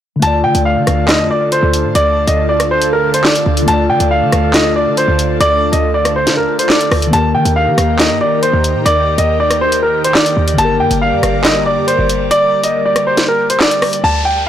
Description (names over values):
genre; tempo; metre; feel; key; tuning
hip hop, drill; 139 BPM; 4/4; half-time; D phrygian; A4 = 439 Hz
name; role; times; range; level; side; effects
warm upright piano; melody; 0.2-14.5 s; Bb4 to A5; -14 LUFS; equal; none
mellow tine electric piano; accompaniment; 0.2-14.1 s; D3 to D5; -20 LUFS; left 4 dB; phaser
airy breathy pad; sustained chords; 0.2-14.0 s; D3 to D5; -19 LUFS; right 1 dB; chorus, phaser
short 808-style bass; bass; 0.2-14.5 s; G1 to Eb3; -18 LUFS; right 1 dB; none
drill drum kit; drums; 0.2-14.0 s; handclaps, hi-hat, rim click, snare drum; -16 LUFS; equal; none
downlifter; sound effects; 14.0-14.5 s; none; -21 LUFS; right 1 dB; none
room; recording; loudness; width
light reverb; blown-out, overdriven recording, overdrive; -10 LUFS; side -10 dB against mid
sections
0.2-14.0 A section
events
kick muted 12.3-14.0; hi-hats muted 14.0-14.5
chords
0.2 Dm; 7.1 Eb; 10.6 Gm